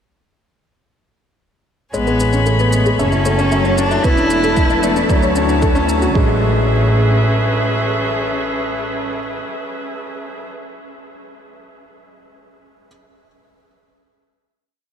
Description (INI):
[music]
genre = piano and strings electronica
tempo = 114 BPM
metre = 4/4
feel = straight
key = A major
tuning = A4 = 441 Hz
[part]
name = warm cello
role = melody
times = 1.9-5.4 s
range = A3 to E4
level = -22 LUFS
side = equal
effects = ping-pong delay
[part]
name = dark string quartet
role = sustained chords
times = 1.9-10.5 s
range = C#4 to B5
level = -22 LUFS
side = equal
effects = none
[part]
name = soft round pluck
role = arpeggios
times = 1.9-6.4 s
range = F#4 to E5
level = -26 LUFS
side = left 2 dB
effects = none
[part]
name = warm upright piano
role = riff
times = 1.9-12.9 s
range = F#3 to E4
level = -21 LUFS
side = left 2 dB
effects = ping-pong delay
[part]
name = clear studio double bass section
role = bass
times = 1.9-7.7 s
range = E1 to D2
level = -18 LUFS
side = equal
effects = sidechain pumping
[part]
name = shaker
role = drums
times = 1.9-6.1 s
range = none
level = -32 LUFS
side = left 1 dB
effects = none
[part]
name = electronic kick drum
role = drums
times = 4.0-6.3 s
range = none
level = -16 LUFS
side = right 1 dB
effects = none
[sound]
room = wet huge ambient reverb, RT60 7.9 s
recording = dreamy mix soaked in reverb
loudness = -14 LUFS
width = side -8 dB against mid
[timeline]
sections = 1.9-6.2 build; 6.2-10.4 final chord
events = build-up 1.9-6.2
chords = 1.9 Amaj9; 3.0 F#m7; 4.0 E7sus4; 5.1 Dmaj7; 6.2 Amaj9